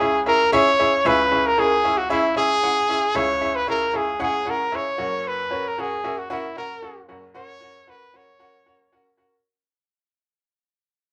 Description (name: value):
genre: soul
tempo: 114 BPM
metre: 4/4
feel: straight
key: C# dorian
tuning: A4 = 440 Hz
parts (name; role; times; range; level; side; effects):
- clear trumpet; melody; 0.0-8.9 s; E4 to C#5; -22 LUFS; equal; none
- bright upright piano; accompaniment; 0.0-9.3 s; F#1 to F#5; -27 LUFS; equal; none
room: moderate studio reverb, RT60 0.5 s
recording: band playing live in one room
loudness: -21 LUFS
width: mono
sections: 0.0-1.0 A section; 1.0-9.4 B section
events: fade-out 1.0-9.4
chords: 0.0 C#m; 5.0 F#